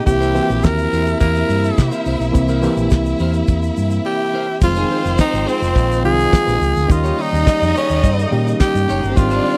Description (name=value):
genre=disco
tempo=106 BPM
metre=4/4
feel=straight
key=unclear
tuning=A4 = 438 Hz
part: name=raspy tenor saxophone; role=melody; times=0.0-9.6 s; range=C4 to Bb4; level=-22 LUFS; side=equal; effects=none
part: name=clear studio string section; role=second line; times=0.0-9.6 s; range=G3 to E5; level=-28 LUFS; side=equal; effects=none
part: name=reed electric piano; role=accompaniment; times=0.0-9.6 s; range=Eb3 to G4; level=-25 LUFS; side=equal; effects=fast tremolo
part: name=mellow French horn section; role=sustained chords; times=0.0-9.6 s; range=C3 to F4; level=-27 LUFS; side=equal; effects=none
part: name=clean electric guitar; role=accompaniment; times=0.1-9.6 s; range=Eb4 to Db5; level=-30 LUFS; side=equal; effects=subtle chorus
part: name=hollow-body short-scale fingered electric bass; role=bass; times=0.1-9.4 s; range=F1 to C3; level=-21 LUFS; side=equal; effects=none
part: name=damped 70s drum kit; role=drums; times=0.1-9.6 s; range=crash cymbal, handclaps, hi-hat, kick drum, snare drum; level=-17 LUFS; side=equal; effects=none
part: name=tube shaker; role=percussion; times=0.1-9.4 s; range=none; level=-44 LUFS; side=equal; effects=none
room=little or no reverb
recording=dry, close 1970s-style studio recording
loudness=-17 LUFS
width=mono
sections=0.0-4.6 A section; 4.6-9.6 B section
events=none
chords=0.1 C7; 4.6 Fm7; 6.9 Eb7